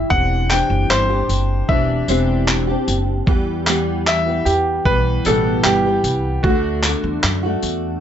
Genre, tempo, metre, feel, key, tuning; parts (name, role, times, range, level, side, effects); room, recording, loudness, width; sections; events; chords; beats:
acoustic pop; 76 BPM; 4/4; straight; E minor; A4 = 440 Hz
warm upright piano; melody; 0.0-8.0 s; F#4 to G5; -19 LUFS; equal
fingerpicked steel-string acoustic guitar; accompaniment; 0.0-8.0 s; E2 to G4; -21 LUFS; left 1 dB; double-tracked left and right
upright bass; bass; 0.0-8.0 s; E1 to F#2; -21 LUFS; equal
dusty soul sampler-style drum kit; drums; 0.1-7.8 s; handclaps, kick drum, tambourine; -20 LUFS; equal
light reverb; nothing above 7.8 kHz; -15 LUFS; side -9 dB against mid
0.0-8.0 A section
0.1 Cadd9/E; 3.3 Em; 6.4 D
| 0.11 0.90 1.69 2.48 | 3.27 4.06 4.86 5.65 | 6.44 7.23